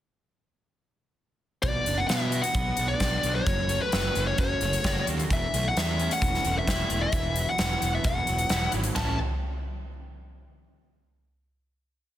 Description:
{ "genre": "quiet-loud alternative rock", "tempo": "131 BPM", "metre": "4/4", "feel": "straight", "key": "A major", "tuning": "A4 = 440 Hz", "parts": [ { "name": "fuzz lead guitar", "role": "melody", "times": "1.6-9.2 s", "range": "B4 to A5", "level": "-28 LUFS", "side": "left 2 dB", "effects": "distortion, slapback echo" }, { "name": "electric guitar at the edge of break-up", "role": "arpeggios", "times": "1.6-9.2 s", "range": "A2 to F#4", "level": "-34 LUFS", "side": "right 4 dB", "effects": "analog chorus" }, { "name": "fuzz picked electric bass", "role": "bass", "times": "1.6-9.2 s", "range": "E1 to B2", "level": "-29 LUFS", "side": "equal", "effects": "overdrive" }, { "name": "big rock drum kit", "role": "drums", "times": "1.6-9.1 s", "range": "hi-hat, kick drum, ride cymbal, snare drum, toms", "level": "-29 LUFS", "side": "equal", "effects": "none" } ], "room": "studio ambience", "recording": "dense, heavily limited modern master", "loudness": "-24 LUFS", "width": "side -12 dB against mid", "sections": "1.6-9.0 verse; 9.0-10.8 final chord", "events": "none", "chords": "1.6 Bm; 3.5 F#m; 5.3 A/E; 7.1 Esus2; 9.0 A" }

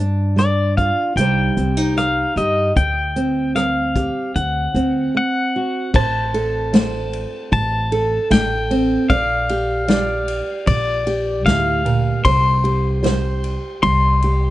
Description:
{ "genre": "acoustic folk-pop ballad", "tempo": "76 BPM", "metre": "4/4", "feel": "straight", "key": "G minor", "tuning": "A4 = 440 Hz", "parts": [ { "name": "fingerpicked steel-string acoustic guitar", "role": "accompaniment", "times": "0.0-14.5 s", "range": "G2 to D5", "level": "-20 LUFS", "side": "right 2 dB", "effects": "none" }, { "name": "upright bass", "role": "bass", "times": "0.0-14.5 s", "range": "A1 to G2", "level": "-21 LUFS", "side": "equal", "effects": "none" }, { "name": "pedal steel guitar", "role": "melody", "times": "0.4-14.5 s", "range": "D5 to C6", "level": "-20 LUFS", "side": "left 2 dB", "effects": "none" }, { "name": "unplugged drum kit", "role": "drums", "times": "0.4-14.4 s", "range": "crash cymbal, hi-hat, kick drum, ride cymbal, rim click, snare drum", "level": "-23 LUFS", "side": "left 1 dB", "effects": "none" } ], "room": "little or no reverb", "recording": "dark, warm production, nothing above 10.8 kHz", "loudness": "-16 LUFS", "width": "side -15 dB against mid", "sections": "0.0-5.9 A section; 5.9-14.5 B section", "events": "none", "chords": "0.0 G5; 1.2 Cm; 2.8 D7sus4; 4.4 D7; 5.9 Am7; 9.1 Gm7/Bb; 12.3 C5" }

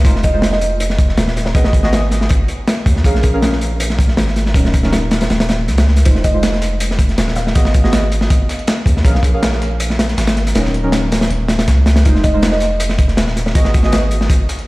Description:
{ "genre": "drum and bass, jungle", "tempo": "160 BPM", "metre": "4/4", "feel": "straight", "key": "F phrygian", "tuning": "A4 = 439 Hz", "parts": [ { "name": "long sustained 808-style bass", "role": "bass", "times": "0.0-14.5 s", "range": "Eb1 to Eb2", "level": "-16 LUFS", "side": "equal", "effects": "none" }, { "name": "crunchy breakbeat drum kit", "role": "drums", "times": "0.0-14.6 s", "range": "hi-hat, kick drum, snare drum", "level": "-15 LUFS", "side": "equal", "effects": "none" }, { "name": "deep mellow chord stab", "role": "stabs", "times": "0.1-14.0 s", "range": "Gb3 to F5", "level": "-22 LUFS", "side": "right 1 dB", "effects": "chorus, dub echo" }, { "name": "buzzing kalimba", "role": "melody", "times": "0.2-1.6, 6.2-7.6, 12.2-13.6 s", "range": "C5 to F5", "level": "-24 LUFS", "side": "right 1 dB", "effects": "dub echo" }, { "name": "breakbeat sampler-style drum kit", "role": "drums", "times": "6.1-14.7 s", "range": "hi-hat, snare drum", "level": "-29 LUFS", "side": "left 1 dB", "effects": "high-pass filter on hats, high-pass filter on snare, high-pass filter on room" } ], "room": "light reverb, small room reverb", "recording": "played on a big sound system in a bare room, stone room reverb", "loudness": "-12 LUFS", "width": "side -20 dB against mid", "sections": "0.0-14.7 A section", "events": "none", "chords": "0.1 Fm7; 1.6 Abm7; 3.1 Bbm7; 4.6 Ebm7; 6.1 Fm7; 7.6 Abm7; 9.1 Bbm7; 10.6 Ebm7; 12.1 Fm7; 13.6 Abm7" }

